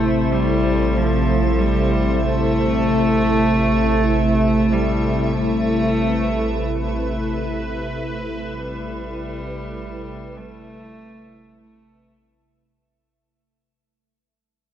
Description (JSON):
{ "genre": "dark ambient drone", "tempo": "free time", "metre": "none", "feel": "none", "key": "A minor", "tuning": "A4 = 443 Hz", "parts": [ { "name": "rich cello", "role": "melody", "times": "0.0-12.5 s", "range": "F3 to A3", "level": "-22 LUFS", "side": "equal", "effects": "tape echo" }, { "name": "sweeping resonant pad", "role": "sustained chords", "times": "0.0-12.8 s", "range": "C3 to C5", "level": "-22 LUFS", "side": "right 1 dB", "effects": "chorus" }, { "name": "deep rumbling drone", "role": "drone", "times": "0.0-13.0 s", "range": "A1", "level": "-25 LUFS", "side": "equal", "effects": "built-in reverb, phaser, lush chorus" }, { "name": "icy glass pad", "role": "texture", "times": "0.0-12.9 s", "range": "E5", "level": "-32 LUFS", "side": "right 2 dB", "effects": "chorus, built-in reverb" } ], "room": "wet huge ambient reverb, RT60 8.3 s", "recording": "worn, warbling old tape, cassette tape, warbly pitch drift", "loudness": "-17 LUFS", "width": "side -10 dB against mid", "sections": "0.0-12.8 A section", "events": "fade-in on ambient pad 0.0-12.8; fade-out 6.2-12.8", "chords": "0.0 Am" }